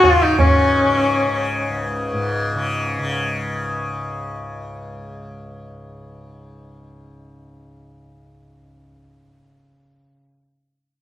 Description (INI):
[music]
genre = indian classical, Hindustani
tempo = 172 BPM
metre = 4/4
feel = straight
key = unclear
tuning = A4 = 440 Hz
[part]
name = rich sarangi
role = melody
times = 0.0-1.8 s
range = C#4 to E#4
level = -16 LUFS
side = left 2 dB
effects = slapback echo
[part]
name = tanpura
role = drone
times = 0.0-10.1 s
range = C#2 to C#3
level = -24 LUFS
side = left 1 dB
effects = none
[part]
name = tabla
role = percussion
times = 0.0-0.5 s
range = none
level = -18 LUFS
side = right 2 dB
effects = none
[sound]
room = light reverb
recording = none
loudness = -17 LUFS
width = side -12 dB against mid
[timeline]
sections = 0.4-3.2 A section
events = none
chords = none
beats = 0.04 | 0.39 0.74 1.09 1.44 | 1.79 2.14 2.48 2.83